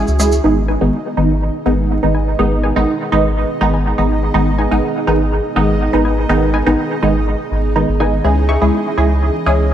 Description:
dub techno; 123 BPM; 4/4; straight; G# minor; A4 = 440 Hz
deep dark ambient pad; sustained chords; 0.0-9.7 s; E3 to G#4; -24 LUFS; right 1 dB; chorus, built-in reverb
filtered dub chord stab; stabs; 0.0-9.7 s; D#3 to G#4; -15 LUFS; right 1 dB; chorus, phaser, dub echo
soft dub sub bass; bass; 0.0-9.7 s; G#1 to C#2; -17 LUFS; equal
bubbling stepped-filter texture; texture; 0.4-9.7 s; D#4 to D#5; -28 LUFS; right 2 dB; chorus, built-in reverb
filtered dub chord stab; riff; 0.7-8.7 s; D#4 to C#6; -28 LUFS; left 4 dB; chorus, dub echo
light reverb, digital ambience; vinyl crackle; -13 LUFS; side -10 dB against mid
0.4-9.7 A section
0.4 G#m; 8.2 C#m
| 0.44 0.93 1.42 1.90 | 2.39 2.88 3.37 3.85 | 4.34 4.83 5.32 5.80 | 6.29 6.78 7.27 7.76 | 8.24 8.73 9.22 9.71

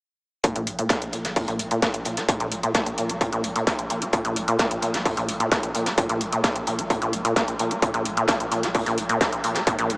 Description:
driving peak-time techno; 130 BPM; 4/4; straight; A4 = 437 Hz
acid bass, saw; riff; 0.4-10.0 s; Ab2 to Bb3; -24 LUFS; equal; wide subtle chorus, sidechain pumping, analog delay
electronic hi-hat; drums; 0.4-10.0 s; -30 LUFS; equal; overdrive
electronic kick drum; drums; 0.4-9.8 s; -25 LUFS; equal; distortion, overdrive
soft brush drum kit; drums; 0.4-10.0 s; hi-hat, snare drum; -31 LUFS; equal; high-pass filter on hats, high-pass filter on snare, high-pass filter on room
saturated sub bass; bass; 0.6-10.0 s; Bb1; -41 LUFS; equal; overdrive, sidechain pumping, low-pass filter
wet huge ambient reverb, RT60 8.3 s; dreamy mix soaked in reverb, small speaker sound; -21 LUFS; side -39 dB against mid
0.4-10.0 A section
filter sweep on acid bass 0.4-10.0
| 0.44 0.90 1.36 1.82 | 2.29 2.75 3.21 3.67 | 4.13 4.59 5.05 5.52 | 5.98 6.44 6.90 7.36 | 7.82 8.29 8.75 9.21 | 9.67

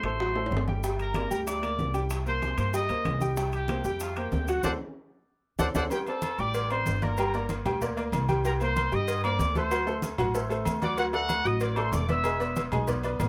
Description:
latin, salsa; 189 BPM; 4/4; straight; A4 = 439 Hz
clear trumpet section; melody; 0.0-12.7 s; F4 to E6; -33 LUFS; equal
bright upright piano; accompaniment; 0.0-13.3 s; F#3 to G#5; -34 LUFS; equal
upright bass; bass; 0.0-13.3 s; E1 to G2; -34 LUFS; equal
bongos and cowbell; percussion; 0.0-13.3 s; -39 LUFS; equal
timbales and agogo bells; percussion; 0.0-13.3 s; -39 LUFS; equal
congas; percussion; 0.2-13.3 s; -38 LUFS; equal
maracas; percussion; 0.8-13.3 s; -48 LUFS; equal
light reverb; close, detailed microphones; -28 LUFS; mono
0.0-5.9 A section; 5.9-13.3 B section
drum fill 0.4-0.8, 5.1-5.9; band accent 4.6-5.9
0.0 D7 (rootless); 0.8 Gm; 2.1 Cm7; 3.4 C7sus4; 4.6 D7(no3); 5.9 D7sus4; 7.2 Gm; 8.4 Cm7; 9.7 D7; 11.0 D; 12.3 E7
0.20 0.51 | 0.83 1.15 1.47 1.78 | 2.10 2.42 2.74 3.05 | 3.37 3.69 4.01 4.32 | 4.64 4.96 5.28 5.59 | 5.91 6.23 6.55 6.86 | 7.18 7.50 7.81 8.13 | 8.45 8.77 9.08 9.40 | 9.72 10.03 10.35 10.67 | 10.98 11.30 11.62 11.94 | 12.25 12.57 12.88 13.20

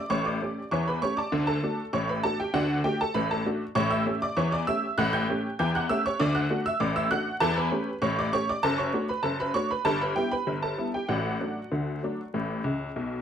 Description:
ragtime piano; 98 BPM; 2/4; straight; D major; A4 = 441 Hz
honky-tonk upright piano; solo; 0.0-13.2 s; F#1 to G6; -25 LUFS; equal
moderate studio reverb, RT60 0.7 s; close, detailed microphones, vinyl crackle; -25 LUFS; side -8 dB against mid
0.0-13.2 A section
honky-tonk piano fill 12.6-13.2
0.0 A7; 1.3 D; 3.8 A7; 6.2 D; 7.4 A7/E; 8.6 D/F#; 9.9 Em/G; 11.1 D/A; 12.3 A
| 0.11 0.72 | 1.32 1.93 | 2.54 3.15 | 3.76 4.37 | 4.98 5.59 | 6.19 6.80 | 7.41 8.02 | 8.63 9.25 | 9.86 10.47 | 11.09 11.71 | 12.33 12.95

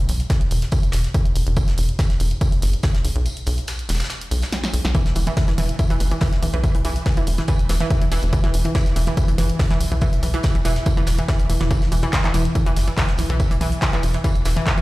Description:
driving peak-time techno; 142 BPM; 4/4; straight; A4 = 439 Hz
tight sequencer bass; bass; 0.1-14.6 s; E1 to B1; -20 LUFS; equal; sidechain pumping
punchy analog drum machine; drums; 0.1-14.8 s; handclaps, hi-hat, snare drum; -29 LUFS; equal
soft brush drum kit; drums; 0.1-14.8 s; hi-hat, snare drum, tambourine; -34 LUFS; left 1 dB; high-pass filter on hats, high-pass filter on snare, high-pass filter on perc, high-pass filter on room
electronic kick drum; drums; 0.3-14.8 s; -20 LUFS; equal
analog pluck; riff; 4.9-14.8 s; E3; -24 LUFS; equal; chorus, tube saturation, sidechain pumping, dub echo
light reverb, studio reverb; played on a big sound system in a bare room, large studio reverb; -18 LUFS; side -19 dB against mid
0.0-14.8 A section
break 3.3-4.9; drum fill 4.5-4.9
0.0 E5
0.30 0.72 1.14 | 1.57 1.99 2.41 2.83 | 3.26 3.68 4.10 4.52 | 4.95 5.37 5.79 6.21 | 6.64 7.06 7.48 7.91 | 8.33 8.75 9.17 9.60 | 10.02 10.44 10.86 11.29 | 11.71 12.13 12.55 12.97 | 13.40 13.82 14.24 14.66

